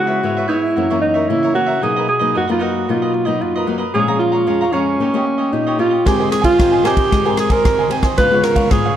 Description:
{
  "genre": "samba and choro",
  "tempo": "113 BPM",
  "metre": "4/4",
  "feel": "straight",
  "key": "unclear",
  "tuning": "A4 = 441 Hz",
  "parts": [
    { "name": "breathy alto saxophone", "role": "melody", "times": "0.0-9.0 s", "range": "Db4 to Cb5", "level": "-16 LUFS", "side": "right 2 dB", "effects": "none" },
    { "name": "nylon-string guitar", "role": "accompaniment", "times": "0.0-9.0 s", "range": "F2 to Bb4", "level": "-20 LUFS", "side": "left 5 dB", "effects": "none" },
    { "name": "cavaquinho", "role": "accompaniment", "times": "0.1-9.0 s", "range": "D#4 to Bb5", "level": "-23 LUFS", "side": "right 3 dB", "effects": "none" },
    { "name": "swinging big-band drum kit", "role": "drums", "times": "6.1-8.8 s", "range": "kick drum, ride cymbal, rim click", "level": "-18 LUFS", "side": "equal", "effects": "none" }
  ],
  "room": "moderate recital hall reverb, RT60 1.6 s",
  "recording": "dark, warm production",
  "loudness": "-14 LUFS",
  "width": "side -10 dB against mid",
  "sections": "0.0-9.0 A section",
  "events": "none",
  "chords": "0.0 Dbm7; 0.8 Gb7; 1.8 Bmaj7; 3.9 Bbm7; 5.0 Eb7; 6.1 Abmaj9; 8.2 Db7",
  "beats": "0.23 0.76 1.29 | 1.82 2.35 2.88 3.41 | 3.94 4.47 5.00 5.53 | 6.06 6.59 7.12 7.65 | 8.18 8.71"
}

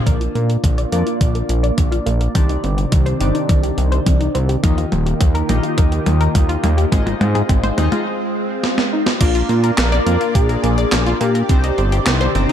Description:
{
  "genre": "synthwave",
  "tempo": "105 BPM",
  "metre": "4/4",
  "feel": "straight",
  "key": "unclear",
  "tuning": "A4 = 439 Hz",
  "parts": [
    { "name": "lush unison pad", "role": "sustained chords", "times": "0.0-12.5 s", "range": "C3 to D5", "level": "-24 LUFS", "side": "equal", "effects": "chorus, phaser, sidechain pumping" },
    { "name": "chorused polysynth", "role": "stabs", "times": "0.0-12.5 s", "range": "Bb3 to Eb5", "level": "-25 LUFS", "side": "left 3 dB", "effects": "ping-pong delay" },
    { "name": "analog pluck", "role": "arpeggios", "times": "0.1-12.5 s", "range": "Bb3 to D5", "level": "-25 LUFS", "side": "left 1 dB", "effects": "chorus, ping-pong delay" },
    { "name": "fat analog bass", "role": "bass", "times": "0.1-12.5 s", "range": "Eb1 to Bb2", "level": "-18 LUFS", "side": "equal", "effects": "sidechain pumping" },
    { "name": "electronic kick drum", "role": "drums", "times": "0.1-11.6 s", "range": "none", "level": "-16 LUFS", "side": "equal", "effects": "none" },
    { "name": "gated 80s digital drum machine", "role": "drums", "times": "0.1-12.5 s", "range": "crash cymbal, handclaps, hi-hat, snare drum, toms", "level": "-22 LUFS", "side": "left 1 dB", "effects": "gated reverb, gated reverb snare" },
    { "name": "wide unison lead", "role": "melody", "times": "8.9-12.3 s", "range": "Eb4 to Bb4", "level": "-23 LUFS", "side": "equal", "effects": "analog chorus, cassette tape, tape echo" }
  ],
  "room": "light reverb, digital ambience",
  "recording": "dark, warm production",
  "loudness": "-14 LUFS",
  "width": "side -9 dB against mid",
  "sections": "0.1-9.2 A section; 9.2-12.5 B section",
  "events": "drum fill 0.1-8.1, 8.6-9.2; filter sweep on analog synth pad 0.1-9.2; filter sweep on synth arpeggio sound 0.1-9.2; filter sweep on analog polysynth 0.1-9.2; break 8.1-9.2",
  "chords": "0.1 Bb; 2.4 Cmadd9; 4.6 Ebadd9; 6.9 Ab6; 9.2 Bb; 11.5 Cmadd9",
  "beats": "| 0.06 0.64 1.21 1.78 | 2.35 2.92 3.49 4.06 | 4.64 5.21 5.78 6.35 | 6.92 7.49 8.06 8.64 | 9.21 9.78 10.35 10.92 | 11.49 12.06"
}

